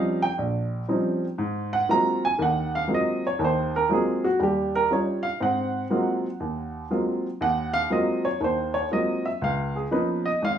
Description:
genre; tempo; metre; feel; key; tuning
solo jazz; 120 BPM; 4/4; swing 68% on 8ths; Ab mixolydian; A4 = 440 Hz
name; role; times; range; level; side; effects
warm baby grand piano; solo; 0.0-10.6 s; Ab1 to Bb5; -22 LUFS; right 1 dB; none
room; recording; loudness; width
moderate club reverb, RT60 0.6 s; small room ambience; -22 LUFS; side -9 dB against mid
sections
0.0-5.4 A section; 5.4-10.6 A section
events
grand piano solo 0.0-10.6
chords
0.0 Eb13; 1.4 Ab13; 4.4 Eb9; 5.4 Ab13; 9.4 Db13

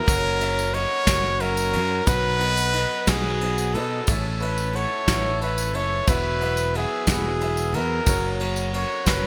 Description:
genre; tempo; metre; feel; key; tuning
indie folk with a building arrangement; 60 BPM (dotted quarters); 6/8; straight; unclear; A4 = 440 Hz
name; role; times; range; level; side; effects
mellow trumpet; melody; 0.0-9.3 s; G#4 to C#5; -27 LUFS; equal; delay
bright upright piano; accompaniment; 0.0-9.3 s; F#1 to F#5; -36 LUFS; equal; none
picked twelve-string acoustic guitar; accompaniment; 0.0-9.3 s; E2 to A4; -35 LUFS; equal; none
accordion; sustained chords; 0.0-9.3 s; B3 to E6; -38 LUFS; equal; none
fingered electric bass; bass; 0.1-9.3 s; E1 to B2; -30 LUFS; equal; none
soft brush drum kit; drums; 0.1-9.2 s; kick drum, ride cymbal, snare drum; -29 LUFS; equal; gated reverb
tambourine; percussion; 0.1-9.2 s; none; -36 LUFS; equal; none
room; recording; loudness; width
light reverb, small room reverb; bright 1980s-style digital production; -23 LUFS; mono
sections
0.0-9.3 A section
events
none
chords
0.1 F#; 2.1 B; 4.1 A; 6.1 Esus2; 8.1 F#

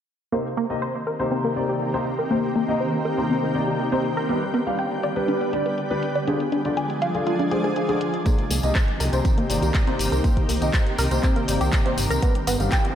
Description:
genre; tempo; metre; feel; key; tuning
progressive house; 121 BPM; 4/4; straight; C minor; A4 = 440 Hz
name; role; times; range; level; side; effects
shimmering ambient pad; sustained chords; 1.0-12.9 s; D3 to Ab4; -27 LUFS; equal; chorus, built-in reverb, sidechain pumping
tight sequenced synth; arpeggios; 0.3-12.8 s; Bb3 to Ab5; -27 LUFS; equal; chorus, sidechain pumping, tape echo
dark concert grand piano; stabs; 0.3-12.7 s; C3 to F5; -26 LUFS; left 1 dB; wide subtle chorus, sidechain pumping, low-pass filter, tape echo
house drum kit; drums; 0.3-12.9 s; handclaps, hi-hat; -32 LUFS; left 1 dB; low-pass filter on hats, low-pass filter on snare, low-pass filter on room
electronic kick drum; drums; 8.3-12.8 s; none; -21 LUFS; equal; none
tambourine; percussion; 8.3-12.8 s; none; -34 LUFS; left 2 dB; none
dark detuned saw bass; bass; 8.5-12.7 s; G1 to C2; -24 LUFS; equal; tube saturation, sidechain pumping
riser; sound effects; 12.6-12.9 s; none; -36 LUFS; right 2 dB; none
room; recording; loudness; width
moderate lush hall reverb, RT60 2.1 s; dreamy mix soaked in reverb; -20 LUFS; side -9 dB against mid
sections
0.3-12.9 A section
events
filter sweep on synth arpeggio sound 0.3-12.9; riser 12.6-12.9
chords
0.3 Cm7; 4.3 G; 6.3 Ddim; 8.3 Cm7; 12.2 G

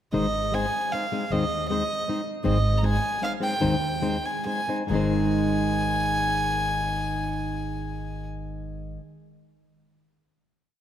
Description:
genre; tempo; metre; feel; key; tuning
mexican folk, mariachi; 136-158 BPM; 3/4; rubato; Ab major; A4 = 438 Hz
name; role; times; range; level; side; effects
warm violin; melody; 0.1-8.3 s; Eb5 to Bb5; -27 LUFS; equal; none
flamenco guitar; accompaniment; 0.1-9.0 s; Ab2 to C5; -27 LUFS; left 2 dB; none
upright bass; bass; 0.1-9.0 s; Ab1 to Eb2; -29 LUFS; right 1 dB; none
room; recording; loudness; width
moderate concert hall reverb, RT60 2.0 s; none; -23 LUFS; side -10 dB against mid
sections
0.1-4.9 A section; 4.9-7.5 final chord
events
slowing down 2.5-4.9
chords
0.1 Ab

